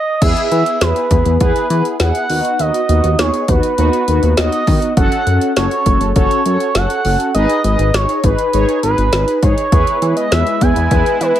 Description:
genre	synth-pop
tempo	101 BPM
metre	4/4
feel	straight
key	E major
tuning	A4 = 440 Hz
part	expressive synth lead	melody	0.0-11.4 s	B4 to G#5	-17 LUFS	right 2 dB	chorus, tape echo
part	mellow synth brass	accompaniment	0.2-11.4 s	B3 to C#5	-19 LUFS	left 1 dB	chorus, phaser
part	chorused synth bass	bass	0.2-11.3 s	F#1 to E3	-16 LUFS	equal	none
part	deep house drum kit	drums	0.2-11.4 s	crash cymbal, hi-hat, kick drum, snare drum	-17 LUFS	equal	none
part	sweeping resonant pad	sustained chords	9.7-11.4 s	G#3 to E4	-23 LUFS	equal	chorus
room	light reverb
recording	echo-heavy mix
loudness	-12 LUFS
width	side -11 dB against mid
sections	0.2-11.4 A section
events	stop 0.0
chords	0.2 E; 2.3 B/D#; 5.0 F#m; 7.3 G#m; 9.7 E

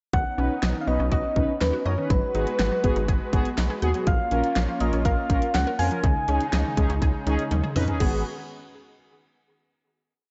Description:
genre	synth-pop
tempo	122 BPM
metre	4/4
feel	straight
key	G# dorian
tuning	A4 = 443 Hz
part	soft struck synth lead	melody	0.1-7.5 s	B4 to G#5	-31 LUFS	equal	chorus, analog delay
part	brassy analog pad	sustained chords	0.1-8.2 s	C#3 to B4	-35 LUFS	equal	chorus
part	analog pluck	arpeggios	0.1-8.2 s	D#3 to F#5	-36 LUFS	equal	chorus, analog delay
part	rubbery square bass	bass	0.1-8.2 s	G#1 to F#2	-28 LUFS	equal	none
part	pop drum kit	drums	0.1-8.1 s	crash cymbal, hi-hat, kick drum, snare drum, toms	-28 LUFS	equal	none
part	analog synth brass	accompaniment	0.4-8.2 s	B3 to B4	-33 LUFS	equal	chorus
room	moderate lush hall reverb, RT60 1.9 s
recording	dark, warm production, nothing above 7.9 kHz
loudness	-24 LUFS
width	mono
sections	0.1-8.0 pre-chorus; 8.0-10.0 final chord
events	drum fill 7.5-8.0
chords	0.1 Badd9; 2.1 G#m7; 4.1 A#m; 6.0 C#sus2; 8.0 G#m7

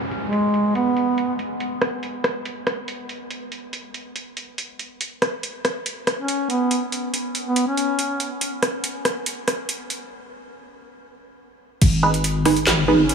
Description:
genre	deep dubstep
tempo	141 BPM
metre	4/4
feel	half-time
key	G# minor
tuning	A4 = 440 Hz
part	downlifter	sound effects	0.0-1.6 s	none	-36 LUFS	equal	none
part	garage drum kit	drums	0.1-13.1 s	crash cymbal, handclaps, hi-hat, rim click, snare drum	-24 LUFS	right 1 dB	overdrive, low-pass filter on hats, small room ambience, low-pass filter on snare, low-pass filter on cymbals
part	warm duduk	melody	0.2-1.4, 6.2-8.3, 13.0-13.1 s	G#3 to C#4	-24 LUFS	right 1 dB	dub echo
part	deep soft wobble bass	bass	11.8-13.1 s	G#1	-21 LUFS	left 1 dB	chorus, tube saturation
part	electronic kick drum	drums	11.8-11.9 s	none	-15 LUFS	equal	overdrive, small room ambience
part	filtered dub chord stab	stabs	12.0-13.1 s	D#4 to B4	-19 LUFS	right 3 dB	phaser, cassette tape, dub echo
room	moderate huge ambient reverb, RT60 7.8 s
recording	small room ambience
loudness	-20 LUFS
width	side -6 dB against mid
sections	0.0-11.8 A section; 11.8-13.1 B section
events	filter sweep on drum 0.0-11.8; break 10.1-11.8; drop 11.8-13.1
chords	0.0 N.C.; 11.8 G#m

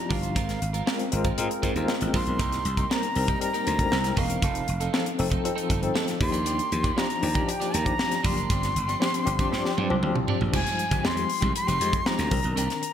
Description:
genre	polished 1980s jazz-funk pop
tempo	118 BPM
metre	4/4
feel	straight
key	unclear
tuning	A4 = 440 Hz
part	jazz flute	melody	0.0-12.9 s	F5 to C6	-30 LUFS	left 1 dB	none
part	tine electric piano	accompaniment	0.0-12.9 s	Eb3 to Bb4	-30 LUFS	left 4 dB	medium tremolo, analog chorus
part	clean electric guitar	riff	0.1-12.9 s	Eb3 to C5	-35 LUFS	right 8 dB	analog chorus
part	slap bass	bass	0.1-12.7 s	E1 to Ab2	-28 LUFS	right 1 dB	none
part	crisp fusion drum kit	drums	0.1-12.9 s	crash cymbal, hi-hat, kick drum, snare drum, toms	-28 LUFS	equal	gated reverb
room	moderate plate reverb, RT60 1.6 s, studio reverb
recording	bright 1980s-style digital production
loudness	-23 LUFS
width	side -9 dB against mid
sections	0.0-10.5 A section; 10.5-12.9 B section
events	drum fill 9.5-10.5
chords	0.4 Ab69; 2.4 Cm7; 3.9 C7alt; 4.4 F7; 6.2 Ebmaj9; 8.5 G7sus4; 10.5 Fm9; 12.3 Cm9

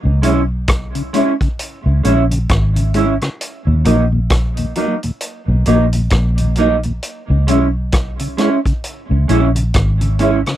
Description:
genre	roots reggae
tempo	66 BPM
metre	4/4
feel	swing 58% on 16ths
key	C# dorian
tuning	A4 = 440 Hz
part	mellow tonewheel organ	accompaniment	0.0-10.5 s	D#2 to E4	-19 LUFS	left 2 dB	chorus vibrato, slow rotary speaker
part	vintage muted fingered electric bass	bass	0.1-10.4 s	G#1 to D#2	-15 LUFS	equal	none
part	mellow electric guitar	accompaniment	0.2-10.4 s	F#3 to E4	-18 LUFS	right 2 dB	analog chorus, tape echo
part	vintage drum kit	drums	0.2-10.6 s	hi-hat, kick drum, rim click	-19 LUFS	equal	none
room	little or no reverb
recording	dry, close 1970s-style studio recording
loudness	-13 LUFS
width	side -12 dB against mid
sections	0.0-10.6 A section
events	none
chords	0.0 C#m; 3.4 D#m; 7.0 C#m

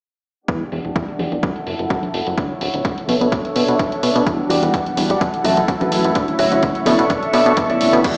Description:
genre	filtered disco house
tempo	127 BPM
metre	4/4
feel	swing 53% on 16ths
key	B minor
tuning	A4 = 440 Hz
part	clear studio string section	sustained chords	0.5-8.2 s	G3 to C#6	-24 LUFS	equal	sidechain pumping, low-pass filter
part	plucky analog bass	bass	0.5-8.2 s	D1 to B2	-23 LUFS	equal	sidechain pumping, low-pass filter
part	electronic kick drum	drums	0.5-8.1 s	none	-24 LUFS	equal	none
part	punchy analog drum machine	drums	0.5-8.1 s	crash cymbal, hi-hat	-30 LUFS	equal	sidechain pumping on hats, low-pass filter on hats, sidechain pumping on cymbals, low-pass filter on cymbals
part	tambourine and congas	percussion	0.5-8.0 s	none	-31 LUFS	equal	sidechain pumping on perc, low-pass filter on perc
part	bell-like tine electric piano	accompaniment	4.3-8.2 s	D3 to F#5	-24 LUFS	equal	phaser, vintage 12-bit sampler grit, sidechain pumping, low-pass filter
part	direct-recorded clean electric guitar	riff	4.5-8.2 s	F#4 to E5	-22 LUFS	equal	vintage 12-bit sampler grit, sidechain pumping, low-pass filter
room	moderate echo chamber reverb, RT60 2.1 s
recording	played on a big sound system in a bare room, large studio reverb, small speaker sound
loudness	-18 LUFS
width	mono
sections	0.5-8.0 A section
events	filter sweep 0.5-8.0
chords	0.5 Em9; 1.4 F#m7; 2.4 Dmaj9; 3.1 Bm11; 4.3 Em9; 5.2 F#m7; 6.2 Dmaj9; 6.9 Bm11

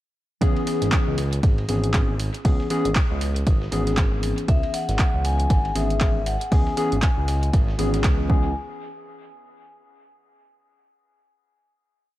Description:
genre	deep house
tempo	118 BPM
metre	4/4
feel	swing 59% on 16ths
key	C# minor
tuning	A4 = 440 Hz
part	warm analog keys	stabs	0.4-8.5 s	E3 to G#4	-27 LUFS	left 1 dB	chorus, sidechain pumping, dub echo
part	smooth synth bass	bass	0.4-8.5 s	G#1 to C#2	-25 LUFS	equal	sidechain pumping
part	dusty soul sampler-style drum kit	drums	0.4-8.2 s	hi-hat, ride cymbal, snare drum	-40 LUFS	right 2 dB	sidechain pumping on cymbals, high-pass filter on cymbals, high-pass filter on snare, sidechain pumping on hats, high-pass filter on hats, high-pass filter on room, dub echo
part	electronic kick drum	drums	0.4-8.4 s	none	-20 LUFS	equal	none
part	punchy analog drum machine	drums	0.4-8.2 s	handclaps, hi-hat	-30 LUFS	right 1 dB	none
part	vibraphone with medium mallets	melody	4.5-8.5 s	E5 to G#5	-30 LUFS	left 3 dB	dub echo
room	little or no reverb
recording	echo-heavy mix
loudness	-19 LUFS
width	side -15 dB against mid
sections	0.4-8.6 drop; 8.6-10.6 final hit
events	drop 0.4-8.6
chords	0.4 C#m7; 8.6 N.C.

